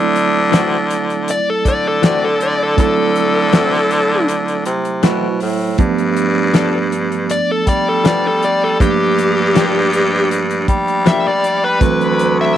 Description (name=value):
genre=straight-eighth soul blues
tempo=80 BPM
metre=4/4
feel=straight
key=D mixolydian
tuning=A4 = 441 Hz
part: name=tine electric piano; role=accompaniment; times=0.0-12.6 s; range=E3 to C5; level=-20 LUFS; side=right 10 dB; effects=medium stereo tremolo
part: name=raspy baritone saxophone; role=bass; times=0.0-12.6 s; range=D2 to G3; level=-16 LUFS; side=left 1 dB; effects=none
part: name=damped 70s drum kit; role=drums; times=0.2-12.4 s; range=hi-hat, kick drum, snare drum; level=-16 LUFS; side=equal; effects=none
part: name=direct-recorded clean electric guitar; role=stabs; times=0.5-11.3 s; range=E3 to A4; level=-23 LUFS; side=left 11 dB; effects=none
part: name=dark smooth lead guitar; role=melody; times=1.3-12.6 s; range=G4 to E5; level=-17 LUFS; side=left 2 dB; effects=overdrive
room=light reverb, small room ambience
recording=1960s-style stereo with parts hard left and right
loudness=-13 LUFS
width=side -11 dB against mid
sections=0.0-12.6 A section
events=none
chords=0.0 D9; 5.8 G9; 8.8 Gm7; 11.8 D9